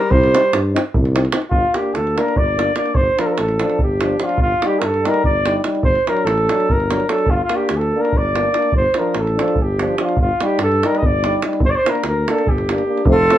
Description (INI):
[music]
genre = balkan folk, Balkan brass band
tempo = 291 BPM (eighths)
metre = 7/8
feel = straight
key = G minor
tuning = A4 = 441 Hz
[part]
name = warm flugelhorn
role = melody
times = 0.0-13.4 s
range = F4 to Eb5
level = -18 LUFS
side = equal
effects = slapback echo, plate reverb
[part]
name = clear alto saxophone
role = second line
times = 0.0-0.6, 13.1-13.4 s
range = G3 to F4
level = -23 LUFS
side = left 4 dB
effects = none
[part]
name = mellow tuba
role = bass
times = 0.1-13.3 s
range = F1 to G2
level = -21 LUFS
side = equal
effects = none
[part]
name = davul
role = percussion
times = 0.1-13.4 s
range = none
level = -20 LUFS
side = right 1 dB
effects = none
[part]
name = clear euphonium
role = accompaniment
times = 0.3-13.4 s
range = C4 to Eb4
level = -24 LUFS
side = left 4 dB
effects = none
[part]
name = clear euphonium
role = accompaniment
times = 0.3-13.4 s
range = F3 to C4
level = -25 LUFS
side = right 4 dB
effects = none
[sound]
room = light reverb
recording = none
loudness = -15 LUFS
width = side -12 dB against mid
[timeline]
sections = 0.0-1.5 A section; 1.5-13.1 B section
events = none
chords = 0.0 Cm; 1.5 Gm; 3.0 Dm/G; 4.4 Ebmaj7/G; 5.8 D/G; 7.3 Gm; 8.7 Dm/G; 10.2 Ebmaj7/G; 11.6 Gm